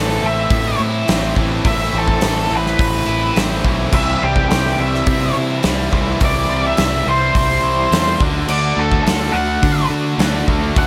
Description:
classic rock; 105 BPM; 4/4; straight; A dorian; A4 = 441 Hz
octave-fuzz lead guitar; melody; 0.0-10.9 s; G4 to F#5; -22 LUFS; equal; distortion
cranked stack guitar; riff; 0.0-10.9 s; A2 to F#4; -26 LUFS; equal; overdrive
tight distorted guitar; riff; 0.0-10.9 s; A2 to F#4; -24 LUFS; equal; distortion
growling picked electric bass; bass; 0.0-10.9 s; A1 to D3; -23 LUFS; equal; overdrive
gated 80s drum kit; drums; 0.5-10.9 s; crash cymbal, hi-hat, kick drum, snare drum; -22 LUFS; equal
light reverb, small room ambience; -16 LUFS; mono
0.0-10.9 A section
0.0 Amadd9; 3.9 C; 8.2 D
0.52 1.09 | 1.66 2.23 2.80 3.37 | 3.94 4.51 5.08 5.65 | 6.22 6.79 7.36 7.93 | 8.49 9.06 9.63 10.20 | 10.77

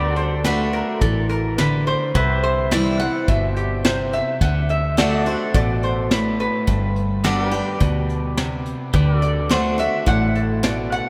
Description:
honky-tonk and classic country; 106 BPM; 4/4; straight; A4 = 440 Hz
lap resonator guitar; second line; 0.0-11.1 s; G4 to F#5; -27 LUFS; equal
picked steel-string acoustic guitar; accompaniment; 0.0-11.1 s; G2 to G4; -25 LUFS; equal
pedal steel guitar; sustained chords; 0.0-11.1 s; F#4 to E5; -31 LUFS; equal; subtle chorus
vintage muted fingered electric bass; bass; 0.0-11.0 s; G1 to D2; -25 LUFS; equal
vintage brush drum kit; drums; 0.2-11.1 s; hi-hat, kick drum, snare drum; -26 LUFS; equal
wet cathedral reverb, RT60 5.9 s; in a vast, echoing space; -20 LUFS; mono
0.0-11.1 A section
resonator guitar played with a steel bar solo 0.0-11.1
0.0 D; 2.1 C; 4.4 D; 6.7 G; 8.9 D
0.45 1.01 1.58 | 2.15 2.71 3.28 3.85 | 4.41 4.98 5.54 6.11 | 6.68 7.24 7.81 8.37 | 8.94 9.51 10.07 10.64

